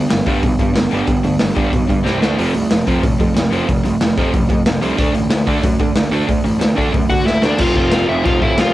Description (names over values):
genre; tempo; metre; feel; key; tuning
punk rock; 184 BPM; 4/4; straight; unclear; A4 = 440 Hz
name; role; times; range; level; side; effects
crunchy overdriven guitar; riff; 0.0-8.7 s; C3 to F4; -18 LUFS; right 4 dB; cassette tape
distorted electric guitar; riff; 0.0-8.7 s; F2 to D4; -24 LUFS; left 7 dB; overdrive, cassette tape
fuzz picked electric bass; bass; 0.0-8.7 s; F1 to D3; -22 LUFS; equal; overdrive
raw garage drum kit; drums; 0.1-8.7 s; crash cymbal, hi-hat, kick drum, snare drum; -17 LUFS; equal; cassette tape
dark smooth lead guitar; melody; 7.1-8.7 s; D4 to F#5; -17 LUFS; left 2 dB; overdrive
room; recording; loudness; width
light reverb; home recording on cassette; -13 LUFS; side -15 dB against mid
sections
0.0-7.6 A section; 7.6-8.7 B section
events
drum fill 2.0-2.4, 7.3-7.6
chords
0.0 G; 2.0 C5; 2.2 D5; 2.4 F; 5.0 D5; 7.6 F